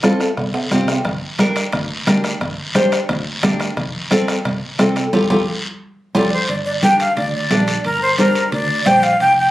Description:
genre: latin, cumbia.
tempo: 177 BPM.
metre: 4/4.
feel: straight.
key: unclear.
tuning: A4 = 440 Hz.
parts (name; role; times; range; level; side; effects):
nylon-string guitar; accompaniment; 0.0-9.1 s; C4 to C5; -18 LUFS; left 1 dB; none.
bombo; percussion; 0.0-6.2 s; none; -25 LUFS; left 1 dB; none.
congas; percussion; 0.0-9.4 s; none; -20 LUFS; equal; none.
guiro; percussion; 0.0-9.5 s; none; -27 LUFS; equal; none.
timbales; percussion; 0.0-9.4 s; none; -26 LUFS; right 3 dB; none.
fingered electric bass; bass; 0.4-9.5 s; F1 to F2; -24 LUFS; equal; none.
breathy jazz flute; melody; 6.2-9.5 s; Bb4 to G5; -16 LUFS; equal; none.
room: moderate booth ambience, RT60 0.2 s.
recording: recorded on a phone in the room, club reverb, compression.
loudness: -15 LUFS.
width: side -15 dB against mid.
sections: 0.0-6.5 A section; 6.5-9.5 B section.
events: drum fill 0.0-1.1, 5.1-6.5; band accent 5.1-6.5.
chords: 0.0 Fadd9; 1.1 Gm; 3.8 F; 6.5 Gm.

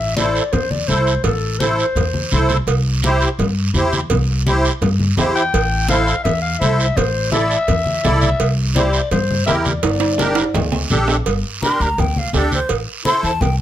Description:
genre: latin, cumbia.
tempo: 168 BPM.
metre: 4/4.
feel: straight.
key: unclear.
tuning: A4 = 440 Hz.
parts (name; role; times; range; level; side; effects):
growling clarinet; second line; 0.0-2.5, 5.4-10.9 s; A4 to G5; -21 LUFS; left 4 dB; none.
upright bass; bass; 0.0-13.6 s; G1 to G2; -19 LUFS; equal; none.
musette accordion; accompaniment; 0.2-13.3 s; D4 to D5; -19 LUFS; right 1 dB; none.
congas; percussion; 0.2-13.6 s; none; -22 LUFS; left 2 dB; none.
guiro; percussion; 0.2-13.6 s; none; -27 LUFS; right 6 dB; none.
cowbell and timbales; percussion; 0.5-13.6 s; none; -22 LUFS; right 6 dB; none.
breathy hollow jazz flute; melody; 11.6-13.6 s; C5 to C6; -20 LUFS; left 1 dB; none.
room: light reverb.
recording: close, detailed microphones.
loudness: -15 LUFS.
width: side -12 dB against mid.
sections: 0.0-11.3 A section; 11.3-13.6 B section.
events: clarinet solo 0.0-11.3; drum fill 9.8-11.3; flute solo 11.3-13.6.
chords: 0.0 Am; 2.7 C; 5.5 Am; 8.4 C; 9.8 Gm; 12.7 Am.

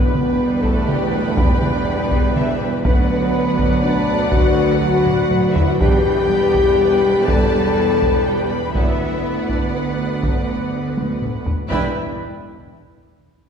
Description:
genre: cinematic, epic orchestral film score.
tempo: 122 BPM.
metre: 3/4.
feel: straight.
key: E minor.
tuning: A4 = 440 Hz.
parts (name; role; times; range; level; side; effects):
warm symphonic violin section; melody; 0.0-12.0 s; F#4 to B5; -30 LUFS; left 4 dB; none.
rich symphonic violin section; second line; 0.0-12.0 s; D5 to G5; -30 LUFS; left 2 dB; none.
rich symphonic viola section; accompaniment; 0.0-12.0 s; E4 to B4; -28 LUFS; right 2 dB; none.
mellow French horn section; sustained chords; 0.0-11.9 s; F#3 to B4; -20 LUFS; left 3 dB; none.
warm trombone section; sustained chords; 0.0-11.9 s; F#3 to D4; -28 LUFS; right 2 dB; none.
clear symphonic double bass section; bass; 0.0-12.0 s; E1 to E2; -26 LUFS; right 3 dB; none.
mellow tuba; bass; 0.0-11.9 s; E1 to D2; -26 LUFS; right 2 dB; none.
timpani; percussion; 0.0-0.6, 11.7-11.9 s; E2; -33 LUFS; right 2 dB; none.
solo taiko drums; drums; 0.1-12.7 s; none; -21 LUFS; equal; none.
rich studio cello section; bass; 0.4-12.0 s; E2 to B3; -26 LUFS; right 4 dB; none.
room: wet concert hall reverb, RT60 1.9 s.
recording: heard from further back in the room.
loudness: -15 LUFS.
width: side -7 dB against mid.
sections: 0.0-11.7 A section; 11.7-13.2 B section.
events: drum fill 5.1-5.8, 11.0-11.7.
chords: 0.0 Em7; 2.8 Bm/D; 5.8 Em7; 8.8 Bm/D; 11.7 Em7.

